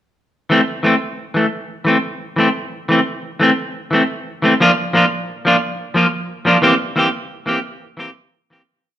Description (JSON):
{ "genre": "highlife", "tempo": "117 BPM (dotted quarters)", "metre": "12/8", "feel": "straight", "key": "unclear", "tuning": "A4 = 440 Hz", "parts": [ { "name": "clean electric guitar", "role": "solo", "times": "0.5-8.6 s", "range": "E3 to G4", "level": "-14 LUFS", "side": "equal", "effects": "none" } ], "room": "wet large studio reverb, RT60 1.5 s", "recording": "band playing live in one room", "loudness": "-14 LUFS", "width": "side -11 dB against mid", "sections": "0.5-8.7 groove", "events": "fade-out 6.6-8.7", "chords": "0.5 Am/E; 4.6 Bb; 6.6 C7" }